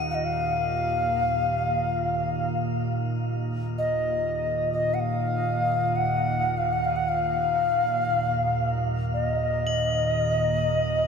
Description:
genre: world meditative, free-time meditation music.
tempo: free time.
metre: none.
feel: none.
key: Eb hirajoshi.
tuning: A4 = 440 Hz.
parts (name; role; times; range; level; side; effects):
organ-like drone; drone; 0.0-11.1 s; Eb2 to Bb2; -28 LUFS; right 2 dB; ensemble chorus, built-in reverb.
crotales; texture; 0.0-11.1 s; Eb7 to Gb7; -38 LUFS; left 5 dB; shimmer reverb.
reedy Native American-style cedar flute; melody; 0.1-11.1 s; Eb5 to Gb5; -24 LUFS; left 2 dB; shimmer reverb, diffuse ambient delay.
room: wet cathedral reverb, RT60 6.3 s.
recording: in a vast, echoing space.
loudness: -23 LUFS.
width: side -6 dB against mid.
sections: 0.0-11.1 A section.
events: none.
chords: none.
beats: free time.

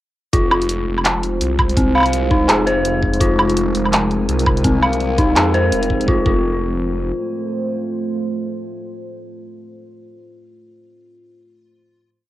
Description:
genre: half-time drum and bass.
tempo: 167 BPM.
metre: 4/4.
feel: swing 58% on 16ths, half-time.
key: F minor.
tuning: A4 = 440 Hz.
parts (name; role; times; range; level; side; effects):
deep dark ambient pad; sustained chords; 0.8-9.7 s; Ab3 to C5; -23 LUFS; right 1 dB; chorus, built-in reverb, sidechain pumping, cassette tape.
dark detuned synth bell; arpeggios; 0.3-11.5 s; C4 to F5; -20 LUFS; left 1 dB; chorus, vintage 12-bit sampler grit, cassette tape, analog delay.
phased detuned saw bass; bass; 0.3-7.1 s; F1 to F2; -21 LUFS; equal; phaser.
drum and bass drum kit; drums; 0.3-6.1 s; handclaps, hi-hat, woodblock; -18 LUFS; right 1 dB; cassette tape.
electronic kick drum; drums; 0.3-6.4 s; none; -18 LUFS; equal; cassette tape.
metallic inharmonic drone; texture; 3.8-6.1 s; C4; -32 LUFS; equal; chorus, built-in reverb, cassette tape.
room: light reverb, digital ambience.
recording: home recording on cassette.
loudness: -15 LUFS.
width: side -14 dB against mid.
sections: 0.3-6.1 drop; 6.1-9.0 final chord.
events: drop 0.3-6.1.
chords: 0.3 Fm; 6.1 F.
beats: | 0.33 0.69 1.05 1.41 | 1.77 2.13 2.49 2.85 | 3.21 3.57 3.93 4.29 | 4.65 5.00 5.36 5.72 | 6.08 6.44 6.80 7.16 | 7.52 7.88 8.24 8.60.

